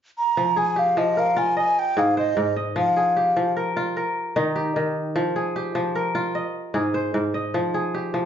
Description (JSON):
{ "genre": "west african traditional, West African string and xylophone music", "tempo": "100 BPM (dotted quarters)", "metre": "12/8", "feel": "straight", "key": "F minor", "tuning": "A4 = 441 Hz", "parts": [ { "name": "mellow baroque flute", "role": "melody", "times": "0.2-3.5 s", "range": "Eb5 to Bb5", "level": "-20 LUFS", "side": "equal", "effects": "none" }, { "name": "kora", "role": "arpeggios", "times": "0.4-8.3 s", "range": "Ab2 to Eb5", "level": "-23 LUFS", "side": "equal", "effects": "none" } ], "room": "wet large studio reverb, RT60 0.7 s", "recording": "band playing live in one room, nothing above 7.5 kHz", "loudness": "-20 LUFS", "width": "side -9 dB against mid", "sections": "0.4-8.3 A section", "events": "none", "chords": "0.4 Fm; 1.6 Ab; 2.8 Fm; 4.0 Eb; 5.2 Fm; 6.3 Ab; 7.5 Fm", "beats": "| 0.37 0.97 1.57 2.17 | 2.76 3.36 3.96 4.56 | 5.16 5.75 6.35 6.95 | 7.54 8.14" }